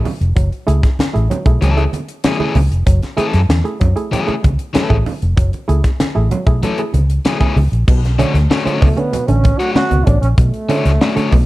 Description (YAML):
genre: funk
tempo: 96 BPM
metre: 4/4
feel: straight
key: F# minor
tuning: A4 = 437 Hz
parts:
  - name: muted clav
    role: stabs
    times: 0.0-11.5 s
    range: B2 to G#4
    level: -21 LUFS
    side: right 3 dB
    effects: plate reverb
  - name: tight funk drum kit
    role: drums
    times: 0.1-11.5 s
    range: crash cymbal, hi-hat, kick drum, snare drum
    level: -16 LUFS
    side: equal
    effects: none
  - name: congas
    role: percussion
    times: 0.1-11.5 s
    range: none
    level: -24 LUFS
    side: right 4 dB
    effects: none
  - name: vintage muted fingered electric bass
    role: bass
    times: 0.2-11.4 s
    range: E#1 to F#2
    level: -14 LUFS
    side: equal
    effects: none
  - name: crunchy overdriven guitar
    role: accompaniment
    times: 1.6-11.3 s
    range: E3 to C#5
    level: -21 LUFS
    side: left 4 dB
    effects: plate reverb
  - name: breathy trombone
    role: melody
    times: 8.8-11.5 s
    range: A3 to F#4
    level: -20 LUFS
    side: right 2 dB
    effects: plate reverb
room: light reverb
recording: dark, warm production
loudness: -12 LUFS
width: side -18 dB against mid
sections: 0.0-7.9 A section; 7.9-11.5 B section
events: none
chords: 0.0 F#m9; 7.9 Bm9